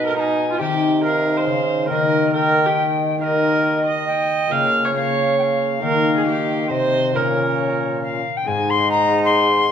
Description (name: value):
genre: classical, renaissance-style consort dance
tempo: 137 BPM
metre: 3/4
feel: straight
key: unclear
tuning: A4 = 437 Hz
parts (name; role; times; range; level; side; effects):
- alto recorder; melody; 0.0-9.7 s; Db5 to C6; -22 LUFS; left 3 dB; none
- dark viola; second line; 0.0-9.7 s; Eb4 to F5; -20 LUFS; right 3 dB; none
- concert harp; accompaniment; 0.0-9.7 s; Ab2 to Bb4; -24 LUFS; left 5 dB; none
- mellow trombone; accompaniment; 0.0-9.7 s; Ab3 to Eb4; -26 LUFS; equal; none
- warm bassoon; bass; 0.0-9.7 s; Ab2 to Eb3; -26 LUFS; right 2 dB; none
room: wet recital hall reverb, RT60 1.3 s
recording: none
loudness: -16 LUFS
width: side -8 dB against mid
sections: 0.0-8.5 A section; 8.5-9.7 A section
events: none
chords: 0.0 B; 0.6 Cm; 1.9 Eb; 4.5 Bbm/Db; 5.8 Eb; 7.1 Bbm; 8.5 Ab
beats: 0.16 | 0.59 1.03 1.46 | 1.90 2.33 2.76 | 3.20 3.64 4.08 | 4.51 4.95 5.39 | 5.83 6.26 6.70 | 7.15 7.59 8.03 | 8.47 8.91 9.35